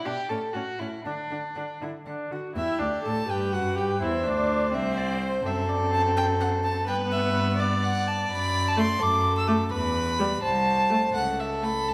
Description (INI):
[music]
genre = quick classical-period movement for string quartet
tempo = 83 BPM (dotted quarters)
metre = 6/8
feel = rubato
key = G major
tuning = A4 = 441 Hz
[part]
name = rich violin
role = second line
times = 0.0-11.9 s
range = D4 to E5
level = -32 LUFS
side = equal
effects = none
[part]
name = warm violin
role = melody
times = 0.1-11.9 s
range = C5 to E6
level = -30 LUFS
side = equal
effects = none
[part]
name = warm viola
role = accompaniment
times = 0.1-11.7 s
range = G3 to A4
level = -33 LUFS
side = equal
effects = none
[part]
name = dark cello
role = bass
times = 0.1-11.9 s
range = C2 to D3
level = -32 LUFS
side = equal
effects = none
[sound]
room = wet recital hall reverb, RT60 1.6 s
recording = none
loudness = -26 LUFS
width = mono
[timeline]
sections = 0.0-2.6 A section; 2.6-11.9 B section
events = none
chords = 0.3 A; 1.0 D; 2.6 G; 4.0 Cadd9; 5.5 F#dim; 6.9 G; 8.3 D/F#; 9.7 Em; 10.4 Am/C; 11.1 A/C#